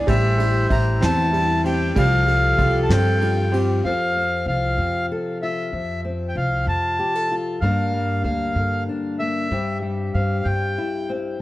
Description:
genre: acoustic folk duo or small band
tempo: 64 BPM (dotted quarters)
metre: 6/8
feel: straight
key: unclear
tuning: A4 = 441 Hz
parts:
  - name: dark clarinet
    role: second line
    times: 0.0-3.8 s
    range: G4 to C5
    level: -27 LUFS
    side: right 1 dB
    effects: none
  - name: fingerpicked steel-string acoustic guitar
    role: accompaniment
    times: 0.0-11.4 s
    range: G2 to Bb4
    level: -25 LUFS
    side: left 3 dB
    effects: none
  - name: bright upright piano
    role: arpeggios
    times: 0.0-3.9 s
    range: G3 to G#4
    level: -26 LUFS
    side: right 4 dB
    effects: none
  - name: upright bass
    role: bass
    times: 0.0-10.8 s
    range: A1 to G2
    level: -22 LUFS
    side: equal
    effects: none
  - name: accordion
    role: melody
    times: 0.1-11.1 s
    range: E5 to Bb5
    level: -24 LUFS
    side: equal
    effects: tape echo
  - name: soft brush drum kit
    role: drums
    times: 0.1-3.7 s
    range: kick drum, ride cymbal, snare drum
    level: -27 LUFS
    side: equal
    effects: none
room: light reverb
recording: worn, warbling old tape, cassette tape, warbly pitch drift, faint mains hum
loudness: -19 LUFS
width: side -16 dB against mid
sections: 0.0-3.8 A section; 3.8-11.4 B section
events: none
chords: 0.1 Am7; 2.0 Csus4; 3.8 F; 7.6 Gm; 9.5 C/G

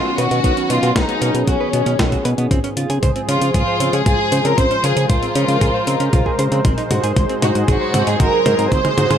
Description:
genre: italo disco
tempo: 116 BPM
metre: 4/4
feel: straight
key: Db major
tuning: A4 = 440 Hz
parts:
  - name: clear studio violin section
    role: melody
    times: 0.0-9.2 s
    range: Db4 to C5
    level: -19 LUFS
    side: equal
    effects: vintage 12-bit sampler grit
  - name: lush unison pad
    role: sustained chords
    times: 0.0-9.2 s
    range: Eb3 to F5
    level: -22 LUFS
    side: left 1 dB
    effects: chorus
  - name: direct-recorded clean electric guitar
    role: arpeggios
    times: 0.0-9.2 s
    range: Cb4 to C5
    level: -25 LUFS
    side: right 5 dB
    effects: vintage 12-bit sampler grit, low-pass filter, tape echo
  - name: fat analog bass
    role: bass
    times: 0.2-9.2 s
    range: Ab1 to Db3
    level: -20 LUFS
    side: equal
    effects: none
  - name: clean 12-bit digital drum machine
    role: drums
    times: 0.2-9.2 s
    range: hi-hat, snare drum, toms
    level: -23 LUFS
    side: left 1 dB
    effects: gated reverb
  - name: electronic kick drum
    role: drums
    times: 0.4-8.8 s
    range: none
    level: -19 LUFS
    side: equal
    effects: none
room: light reverb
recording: none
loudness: -14 LUFS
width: side -9 dB against mid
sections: 0.0-2.5 A section; 2.5-9.2 B section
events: drum fill 2.5-9.2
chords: 0.0 Cbadd9; 2.5 Dbmaj7; 6.6 Ab7

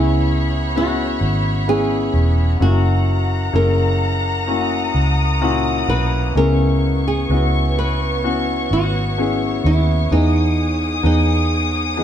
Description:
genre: pop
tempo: 64 BPM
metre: 4/4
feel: straight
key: C# dorian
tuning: A4 = 436 Hz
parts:
  - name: flamenco guitar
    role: melody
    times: 0.0-12.0 s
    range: D#4 to B4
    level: -23 LUFS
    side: right 2 dB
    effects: none
  - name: clear concert grand piano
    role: accompaniment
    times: 0.0-12.0 s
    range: A#2 to G#4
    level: -22 LUFS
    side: left 3 dB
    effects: none
  - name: warm studio string section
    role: sustained chords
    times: 0.0-12.0 s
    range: B3 to D#6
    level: -24 LUFS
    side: left 2 dB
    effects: none
  - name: vintage muted fingered electric bass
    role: bass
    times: 0.0-12.0 s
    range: E1 to E2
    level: -18 LUFS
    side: right 1 dB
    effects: none
room: moderate stone room reverb, RT60 1.0 s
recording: band playing live in one room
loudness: -15 LUFS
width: side -10 dB against mid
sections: 0.0-12.0 A section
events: none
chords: 0.0 C#m7; 2.6 F#7; 6.4 C#m7; 10.1 Emaj7

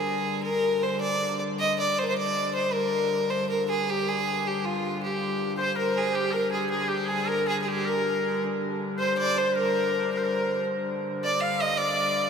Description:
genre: medieval dance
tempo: 106 BPM (dotted quarters)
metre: 6/8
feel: straight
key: G phrygian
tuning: A4 = 439 Hz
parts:
  - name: clear fiddle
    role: melody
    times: 0.0-12.3 s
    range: F4 to F5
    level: -26 LUFS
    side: right 1 dB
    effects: none
  - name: dark hurdy-gurdy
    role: drone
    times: 0.0-12.3 s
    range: G2 to D3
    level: -32 LUFS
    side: left 3 dB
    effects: none
  - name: Celtic harp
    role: second line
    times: 5.6-12.3 s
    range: G4 to F5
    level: -32 LUFS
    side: equal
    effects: none
  - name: edgy shawm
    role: second line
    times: 5.6-12.3 s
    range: G4 to F5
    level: -32 LUFS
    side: left 4 dB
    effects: none
room: wet cathedral reverb, RT60 6.2 s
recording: in a vast, echoing space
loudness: -24 LUFS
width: side -6 dB against mid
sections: 0.0-6.1 A section; 6.1-12.3 A section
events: none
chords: none

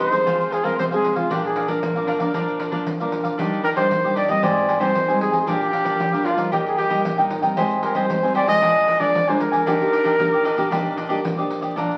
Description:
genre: samba and choro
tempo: 115 BPM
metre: 4/4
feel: straight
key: Eb major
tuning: A4 = 440 Hz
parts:
  - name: mellow trumpet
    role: melody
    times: 0.0-12.0 s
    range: D4 to Eb5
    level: -23 LUFS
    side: equal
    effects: none
  - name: cavaquinho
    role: accompaniment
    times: 0.0-12.0 s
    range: D4 to Bb5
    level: -27 LUFS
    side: equal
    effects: none
  - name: nylon-string guitar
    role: accompaniment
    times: 0.0-12.0 s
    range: F2 to Ab4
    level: -29 LUFS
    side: equal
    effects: none
  - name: nylon-string guitar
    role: bass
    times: 0.0-12.0 s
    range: Ab2 to F3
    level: -35 LUFS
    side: equal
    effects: none
  - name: pandeiro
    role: percussion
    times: 0.0-12.0 s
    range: none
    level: -32 LUFS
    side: equal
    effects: none
room: wet large studio reverb, RT60 1.0 s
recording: very old 78 rpm record, vinyl crackle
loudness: -20 LUFS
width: mono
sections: 0.0-11.8 A section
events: none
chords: 0.3 Fm; 1.3 Bb; 3.4 Ebmaj7; 4.4 Abmaj7; 5.5 Bb; 6.5 Eb/Bb; 7.6 Abmaj7; 8.6 Bb7; 9.7 Ebmaj7

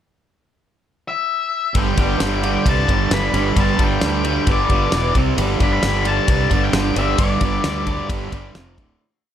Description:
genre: classic rock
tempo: 132 BPM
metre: 4/4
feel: straight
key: unclear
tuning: A4 = 440 Hz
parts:
  - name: octave-fuzz lead guitar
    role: melody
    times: 1.1-8.1 s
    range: D5 to B5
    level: -23 LUFS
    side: left 5 dB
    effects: distortion
  - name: bright tonewheel organ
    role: sustained chords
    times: 1.7-8.5 s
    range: G3 to B4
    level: -34 LUFS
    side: right 1 dB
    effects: none
  - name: fuzz fingered electric bass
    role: bass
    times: 1.7-9.0 s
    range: D1 to D2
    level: -22 LUFS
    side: equal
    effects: overdrive
  - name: damped 70s drum kit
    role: drums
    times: 1.7-8.9 s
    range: kick drum, ride cymbal, snare drum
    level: -21 LUFS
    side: equal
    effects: none
  - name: overdriven electric guitar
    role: riff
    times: 1.8-9.0 s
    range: D2 to C4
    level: -24 LUFS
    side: left 6 dB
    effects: none
  - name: overdriven semi-hollow guitar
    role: riff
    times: 1.8-9.0 s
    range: D2 to C4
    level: -22 LUFS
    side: right 8 dB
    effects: none
room: light reverb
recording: none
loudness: -16 LUFS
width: side -10 dB against mid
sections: 0.0-1.8 pickup bar; 1.8-9.0 pre-chorus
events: fade-out 7.2-9.0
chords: 0.0 N.C.; 1.8 G; 4.9 E5; 5.2 C5; 5.4 G; 8.6 F5; 8.8 D5

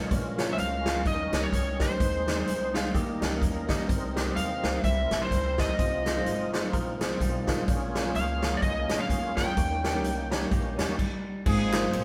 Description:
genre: uptempo gospel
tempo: 127 BPM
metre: 4/4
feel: swing 58% on 8ths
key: unclear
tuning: A4 = 440 Hz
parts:
  - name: warm concert grand piano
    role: accompaniment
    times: 0.0-12.0 s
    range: Ab2 to F5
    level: -37 LUFS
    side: equal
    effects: none
  - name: tonewheel organ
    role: sustained chords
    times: 0.0-12.0 s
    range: Eb3 to C5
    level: -36 LUFS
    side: equal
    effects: overdrive, chorus vibrato, slow rotary speaker
  - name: upright bass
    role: bass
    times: 0.0-12.0 s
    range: Ab1 to Fb2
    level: -36 LUFS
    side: equal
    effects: none
  - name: swinging big-band drum kit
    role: drums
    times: 0.1-12.0 s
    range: crash cymbal, hi-hat, kick drum, ride cymbal, snare drum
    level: -31 LUFS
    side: equal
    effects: none
  - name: overdriven slide guitar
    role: melody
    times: 0.5-10.3 s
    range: C5 to G5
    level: -33 LUFS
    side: equal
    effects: none
  - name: clean electric guitar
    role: second line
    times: 2.7-3.9, 6.7-11.4 s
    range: G3 to Bb4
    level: -41 LUFS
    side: equal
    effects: none
  - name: warm horn section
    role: melody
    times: 11.5-12.0 s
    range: Ab3 to Ab4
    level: -34 LUFS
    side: equal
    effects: none
  - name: group handclap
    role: percussion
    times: 11.7-11.8 s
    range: none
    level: -41 LUFS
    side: equal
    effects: none
room: moderate studio reverb, RT60 0.9 s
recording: band playing live in one room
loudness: -28 LUFS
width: mono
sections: 0.0-11.5 A section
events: stop 11.0-11.5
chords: 0.1 Bbm7; 1.1 Eb7; 2.0 Ab/Eb; 2.9 Eb; 3.9 Cm7; 4.8 C7; 5.8 Fm7; 7.7 Bbm7; 9.6 Eb7; 11.5 Ab69

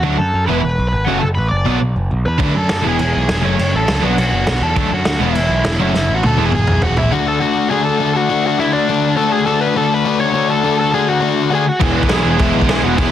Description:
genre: punk rock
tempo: 204 BPM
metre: 4/4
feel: straight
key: unclear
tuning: A4 = 437 Hz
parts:
  - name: smooth overdriven lead guitar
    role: melody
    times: 0.0-13.1 s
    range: D4 to D6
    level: -19 LUFS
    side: right 1 dB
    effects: slapback echo
  - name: crunchy overdriven guitar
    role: riff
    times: 0.0-13.1 s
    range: F#2 to G#4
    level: -17 LUFS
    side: left 6 dB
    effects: none
  - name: crunchy overdriven guitar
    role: riff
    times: 0.0-6.5, 11.8-13.1 s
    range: F#2 to F#4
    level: -20 LUFS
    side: right 8 dB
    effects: none
  - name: growling picked electric bass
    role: bass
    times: 0.0-7.1, 11.8-13.1 s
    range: E1 to F#2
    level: -19 LUFS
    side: equal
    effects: overdrive
  - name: overdriven electric guitar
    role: riff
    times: 2.4-7.1, 11.8-13.1 s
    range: F#2 to G#4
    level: -23 LUFS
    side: equal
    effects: none
  - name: loose indie drum kit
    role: drums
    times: 2.4-7.0, 11.8-13.1 s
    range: crash cymbal, kick drum, snare drum, toms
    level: -19 LUFS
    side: equal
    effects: none
room: small room ambience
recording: dense, heavily limited modern master, vinyl crackle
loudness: -13 LUFS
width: side -11 dB against mid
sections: 0.0-7.1 A section; 7.1-13.1 B section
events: drum fill 5.9-7.1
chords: 0.0 D; 0.5 E; 1.1 F#m; 1.7 Bm; 2.4 D; 2.9 E; 3.4 F#m; 4.0 Bm; 4.8 D; 5.2 E; 5.8 F#m; 6.4 E; 7.1 D; 11.7 E

